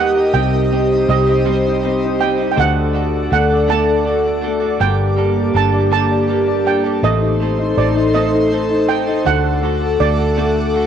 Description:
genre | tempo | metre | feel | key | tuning
six-eight pop ballad | 54 BPM (dotted quarters) | 6/8 | straight | unclear | A4 = 440 Hz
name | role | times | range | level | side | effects
steel pan | second line | 0.0-10.9 s | D5 to A5 | -20 LUFS | right 10 dB | cassette tape
clear baby grand piano | accompaniment | 0.0-10.9 s | C3 to D5 | -21 LUFS | left 10 dB | cassette tape
airy breathy pad | sustained chords | 0.0-10.9 s | Bb3 to Eb6 | -18 LUFS | right 1 dB | chorus, cassette tape
direct-recorded clean electric guitar | arpeggios | 0.0-10.9 s | G2 to A4 | -25 LUFS | right 9 dB | cassette tape
vintage muted fingered electric bass | bass | 0.0-10.9 s | G1 to Eb2 | -20 LUFS | equal | none
room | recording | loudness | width
light reverb | home recording on cassette | -13 LUFS | side -8 dB against mid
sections
0.0-10.9 A section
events
none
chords
0.3 Cm; 2.6 D; 4.8 Gmadd9; 7.0 Adim; 9.3 D

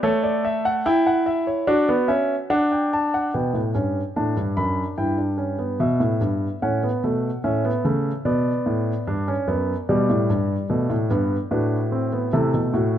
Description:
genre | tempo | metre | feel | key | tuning
classical, baroque-style 4-part fugue for grand piano | 73 BPM | 4/4 | straight | G major | A4 = 442 Hz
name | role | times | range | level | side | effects
dark grand piano | solo | 0.0-13.0 s | F#2 to B5 | -20 LUFS | equal | none
room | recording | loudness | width
light reverb | close, detailed microphones | -20 LUFS | side -10 dB against mid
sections
0.0-3.3 A section; 3.3-13.0 B section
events
none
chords
0.0 A7; 1.7 D; 3.3 G; 5.0 C#dim/G; 6.6 F#m/A; 8.3 Bm; 9.9 G; 11.5 Am; 12.3 Am69

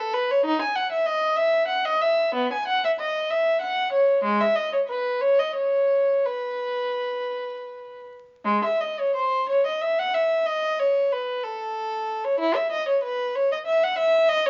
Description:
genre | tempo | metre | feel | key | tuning
classical, baroque-style suite movement for unaccompanied violin | 50-66 BPM (dotted quarters) | 6/8 | rubato | E major | A4 = 440 Hz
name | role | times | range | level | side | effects
dark violin | solo | 0.0-14.5 s | G#3 to G#5 | -24 LUFS | equal | none
room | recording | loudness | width
light reverb | dark, warm production, vinyl crackle, nothing above 7.5 kHz | -24 LUFS | mono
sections
0.0-8.4 A section; 8.4-14.5 B section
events
none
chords
none

